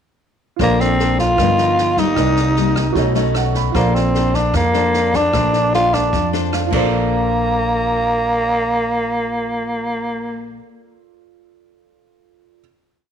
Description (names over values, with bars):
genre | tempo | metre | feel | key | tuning
bossa nova | 152 BPM | 4/4 | straight | Bb major | A4 = 442 Hz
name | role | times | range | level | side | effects
growling tenor saxophone | melody | 0.6-10.6 s | Bb3 to F4 | -17 LUFS | right 1 dB | none
nylon-string guitar | accompaniment | 0.6-10.7 s | G2 to C5 | -22 LUFS | left 10 dB | none
warm grand piano | accompaniment | 0.6-12.6 s | F4 to B5 | -25 LUFS | right 10 dB | none
upright bass | bass | 0.6-10.6 s | G1 to F2 | -22 LUFS | equal | none
open jazz drum kit | drums | 0.6-6.8 s | crash cymbal, kick drum, rim click, snare drum | -25 LUFS | right 1 dB | none
room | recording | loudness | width
moderate echo chamber reverb, RT60 1.4 s | 1960s-style stereo with parts hard left and right | -15 LUFS | side -8 dB against mid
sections
0.6-6.9 A section; 6.9-10.1 final hit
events
grand piano fill 3.0-3.8, 6.3-6.9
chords
0.6 Bbmaj9; 1.4 G7alt; 2.2 Cm7; 3.0 B9; 3.8 Bbmaj9